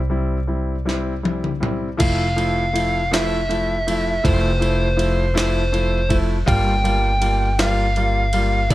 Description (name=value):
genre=six-eight pop ballad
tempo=54 BPM (dotted quarters)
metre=6/8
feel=straight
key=F major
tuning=A4 = 439 Hz
part: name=upright bass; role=bass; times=0.0-8.7 s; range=F1 to D2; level=-22 LUFS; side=equal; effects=none
part: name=warm concert grand piano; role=accompaniment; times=0.1-8.7 s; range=F3 to F4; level=-23 LUFS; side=left 1 dB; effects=none
part: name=jungle sampler-style drum kit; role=drums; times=0.9-8.7 s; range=crash cymbal, kick drum, ride cymbal, snare drum, toms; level=-25 LUFS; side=equal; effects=none
part: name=biting lead guitar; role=melody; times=2.0-8.7 s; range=C5 to G5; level=-22 LUFS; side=equal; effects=overdrive
room=digital ambience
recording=dark, warm production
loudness=-17 LUFS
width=side -16 dB against mid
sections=0.0-2.0 A section; 2.0-8.7 B section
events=drum fill 0.9-2.0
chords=0.0 C; 2.0 Fmaj7; 6.5 Gm7